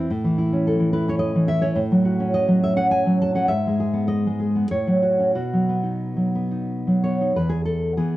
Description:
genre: romantic piece for solo classical guitar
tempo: 88-107 BPM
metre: 3/4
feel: rubato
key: E major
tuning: A4 = 440 Hz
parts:
  - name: nylon-string guitar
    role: solo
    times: 0.0-8.2 s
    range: E2 to A5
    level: -19 LUFS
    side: equal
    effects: none
room: light reverb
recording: dark, warm production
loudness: -19 LUFS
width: side -16 dB against mid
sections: 0.0-7.3 A section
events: none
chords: 0.1 A; 1.8 F#m/A; 3.5 E/G#; 4.7 F#m/A; 5.3 B; 7.3 E

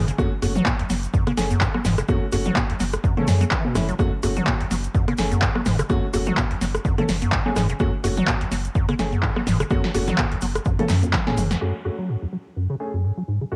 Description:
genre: acid house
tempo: 126 BPM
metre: 4/4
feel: swing 56% on 16ths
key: F# minor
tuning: A4 = 440 Hz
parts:
  - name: deep acid bass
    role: riff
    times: 0.0-13.6 s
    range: E2 to F#3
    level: -28 LUFS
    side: equal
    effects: overdrive, subtle chorus, cassette tape, sidechain pumping
  - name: saturated sub bass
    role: bass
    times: 0.0-11.5 s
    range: F#1 to F#2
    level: -28 LUFS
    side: equal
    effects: tube saturation, sidechain pumping
  - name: punchy analog drum machine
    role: drums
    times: 0.1-11.6 s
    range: congas, handclaps, hi-hat, rim click, snare drum, toms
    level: -27 LUFS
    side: equal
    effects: overdrive, low-pass filter on perc, low-pass filter on snare, low-pass filter on hats, low-pass filter on toms
  - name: cabasa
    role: percussion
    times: 0.1-11.6 s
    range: none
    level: -43 LUFS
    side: equal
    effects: none
  - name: warm baby grand piano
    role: stabs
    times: 0.2-13.6 s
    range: A3 to A4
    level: -31 LUFS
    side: equal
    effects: low-pass filter, analog delay
  - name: electronic kick drum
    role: drums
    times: 0.2-11.2 s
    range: none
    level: -26 LUFS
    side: equal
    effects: overdrive
room: light reverb, digital ambience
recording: home recording on cassette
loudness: -22 LUFS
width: mono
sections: 0.0-11.6 A section; 11.6-13.6 B section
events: drop 0.0-11.6; drum fill 11.1-11.6; band accent 11.5; filter sweep on acid bass 11.6-13.6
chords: 0.0 F#m

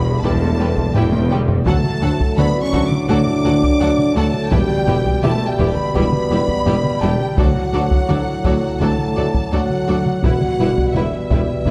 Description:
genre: cinematic, hybrid orchestral and electronic film score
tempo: 84 BPM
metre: 4/4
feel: straight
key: E minor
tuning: A4 = 440 Hz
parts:
  - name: clear symphonic violin section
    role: melody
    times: 0.0-11.7 s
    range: E5 to D6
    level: -29 LUFS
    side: equal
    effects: none
  - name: dark trombone section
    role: sustained chords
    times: 0.0-11.7 s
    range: A2 to G3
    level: -27 LUFS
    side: equal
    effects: none
  - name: mellow French horn section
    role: sustained chords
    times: 0.0-11.7 s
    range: E3 to F#4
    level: -25 LUFS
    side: equal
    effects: none
  - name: rich studio double bass section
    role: bass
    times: 0.0-11.7 s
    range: E1 to D2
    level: -26 LUFS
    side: equal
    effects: none
  - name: warm symphonic cello section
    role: bass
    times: 0.0-11.7 s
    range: D2 to E2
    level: -26 LUFS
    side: equal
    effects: none
  - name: warm tuba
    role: bass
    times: 0.0-11.7 s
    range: E1 to D2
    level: -26 LUFS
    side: equal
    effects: none
  - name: felt-muted upright piano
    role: texture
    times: 0.0-10.3 s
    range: D5 to A5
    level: -35 LUFS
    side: equal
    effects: none
  - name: clear symphonic violin section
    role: second line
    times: 0.2-11.7 s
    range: E4 to F#5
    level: -32 LUFS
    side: equal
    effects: none
  - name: clear symphonic viola section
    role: accompaniment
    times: 0.2-11.7 s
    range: F#3 to F#4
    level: -29 LUFS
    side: equal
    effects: none
  - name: taiko ensemble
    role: drums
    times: 0.2-11.7 s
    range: none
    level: -23 LUFS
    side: equal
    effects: none
room: wet scoring stage reverb, RT60 1.6 s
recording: dark, warm production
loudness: -17 LUFS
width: mono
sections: 0.0-11.7 A section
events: drum fill 0.9-1.7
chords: 0.0 Em; 1.7 D; 4.5 Em; 7.4 D; 10.2 Em

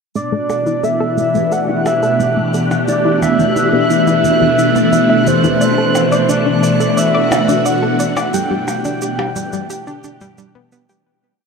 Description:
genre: ambient, sequencer-driven space music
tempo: 88 BPM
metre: 4/4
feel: straight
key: unclear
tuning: A4 = 439 Hz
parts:
  - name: soft octave-layered synth lead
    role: melody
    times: 0.2-10.4 s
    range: C5 to G5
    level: -17 LUFS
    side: equal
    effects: chorus, tape echo
  - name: phased string machine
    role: sustained chords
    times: 0.2-11.1 s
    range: B2 to G4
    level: -16 LUFS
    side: equal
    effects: ensemble chorus, phaser
  - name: analog pluck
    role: riff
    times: 0.2-11.0 s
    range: E3 to D5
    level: -21 LUFS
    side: left 1 dB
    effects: chorus, tape echo
  - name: shaker and percussion blips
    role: percussion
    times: 0.2-11.0 s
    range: none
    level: -26 LUFS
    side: right 1 dB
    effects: none
  - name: bubbling stepped-filter texture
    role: texture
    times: 1.1-11.1 s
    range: F#6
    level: -24 LUFS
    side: right 3 dB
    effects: chorus, built-in reverb
room: wet huge ambient reverb, RT60 7.9 s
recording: none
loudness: -12 LUFS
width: side -5 dB against mid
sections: 0.2-11.1 A section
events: fade-in on drum 0.2-11.1; filter sweep on synth arpeggio sound 0.2-11.1; fade-out 7.4-11.1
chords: 0.2 Emadd9; 5.6 D7; 8.3 Gmaj7

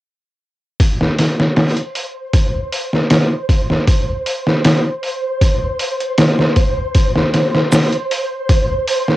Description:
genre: trip hop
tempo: 78 BPM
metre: 4/4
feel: straight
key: unclear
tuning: A4 = 441 Hz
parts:
  - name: trip hop sampler-style drum kit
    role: drums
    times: 0.8-9.2 s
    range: hi-hat, kick drum, snare drum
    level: -14 LUFS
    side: equal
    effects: overdrive, cassette tape
  - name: flickering grainy texture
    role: texture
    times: 1.4-9.2 s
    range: C5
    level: -22 LUFS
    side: right 1 dB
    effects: built-in reverb, cassette tape
  - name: maracas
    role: percussion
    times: 7.7-7.9 s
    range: none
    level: -27 LUFS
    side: equal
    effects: none
room: moderate booth ambience, RT60 0.2 s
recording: home recording on cassette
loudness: -14 LUFS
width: side -16 dB against mid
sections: 0.8-9.2 A section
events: none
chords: none

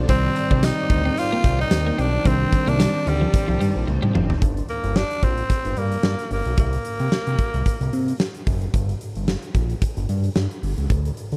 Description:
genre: 1980s-style pop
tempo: 111 BPM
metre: 4/4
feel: swing 55% on 16ths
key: G minor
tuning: A4 = 440 Hz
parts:
  - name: mellow tine electric piano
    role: accompaniment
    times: 0.0-4.4 s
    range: Eb3 to D5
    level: -29 LUFS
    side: equal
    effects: none
  - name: overdriven electric guitar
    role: accompaniment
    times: 0.0-4.4 s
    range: C3 to C4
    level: -40 LUFS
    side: equal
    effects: none
  - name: soft string machine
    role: sustained chords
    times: 0.0-4.4 s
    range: Eb3 to A5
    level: -35 LUFS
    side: equal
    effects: none
  - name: fat analog bass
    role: bass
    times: 0.0-11.4 s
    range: F#1 to D3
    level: -25 LUFS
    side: equal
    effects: none
  - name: raspy tenor saxophone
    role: melody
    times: 0.1-8.2 s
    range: G3 to F4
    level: -28 LUFS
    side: equal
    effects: slapback echo
  - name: twelve-string electric guitar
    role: riff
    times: 0.1-4.3 s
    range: F3 to Eb4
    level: -29 LUFS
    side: equal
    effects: subtle chorus, slapback echo
  - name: huge arena drum kit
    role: drums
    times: 0.1-11.4 s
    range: hi-hat, kick drum, snare drum, tambourine, toms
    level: -26 LUFS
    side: equal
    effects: none
room: small room ambience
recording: none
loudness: -22 LUFS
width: mono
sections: 0.0-4.4 A section; 4.4-11.4 B section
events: drum fill 3.9-4.4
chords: 0.1 Cmadd9; 4.4 Gm; 6.6 F#; 8.7 Gm

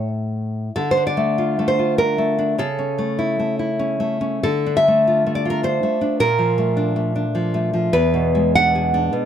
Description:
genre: romantic piece for solo classical guitar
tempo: 85-109 BPM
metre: 3/4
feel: rubato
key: D minor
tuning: A4 = 439 Hz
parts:
  - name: nylon-string guitar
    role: solo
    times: 0.0-9.3 s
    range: E2 to F#5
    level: -17 LUFS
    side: equal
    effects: none
room: light reverb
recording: close, detailed microphones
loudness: -17 LUFS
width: side -9 dB against mid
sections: 0.7-9.3 A section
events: none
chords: 0.0 A5; 0.7 Dm; 2.6 A/C#; 4.4 Dm; 6.2 Bbmaj7; 7.9 E7

